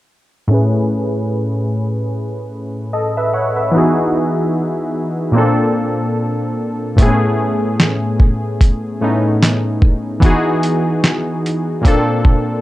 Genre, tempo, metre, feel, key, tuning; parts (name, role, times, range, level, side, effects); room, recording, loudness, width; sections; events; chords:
lo-fi hip hop; 74 BPM; 4/4; swing 57% on 16ths; A lydian; A4 = 439 Hz
warm analog keys; accompaniment; 0.5-12.6 s; A2 to F#5; -15 LUFS; equal; chorus, low-pass filter
dusty soul sampler-style drum kit; drums; 7.0-12.5 s; handclaps, hi-hat, kick drum, snare drum; -12 LUFS; equal; overdrive
moderate studio reverb, RT60 0.5 s; cassette tape; -14 LUFS; side -16 dB against mid
0.5-12.6 A section
filter sweep on synth keys 0.5-12.6
0.5 Amaj9; 3.7 Emaj9; 5.4 Bbmaj9; 7.0 Amaj9; 10.2 Emaj9; 11.8 Bbmaj9